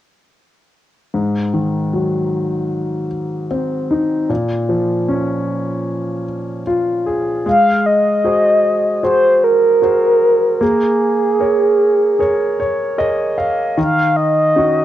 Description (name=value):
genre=pop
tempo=76 BPM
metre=4/4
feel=straight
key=unclear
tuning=A4 = 439 Hz
part: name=warm concert grand piano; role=accompaniment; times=1.1-14.8 s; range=Ab2 to F5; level=-17 LUFS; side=left 1 dB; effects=cassette tape
part: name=mellow horn-like synth lead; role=melody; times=7.5-14.8 s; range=Ab4 to F5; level=-13 LUFS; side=right 1 dB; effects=chorus, cassette tape, plate reverb
room=moderate studio reverb, RT60 0.6 s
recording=home recording on cassette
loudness=-14 LUFS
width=side -12 dB against mid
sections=1.1-7.5 A section; 7.5-14.8 B section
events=grand piano fill 12.2-13.8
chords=1.1 Ab7; 4.3 Bbm7; 7.5 Ab7; 10.6 Bbm7; 13.8 Ebm7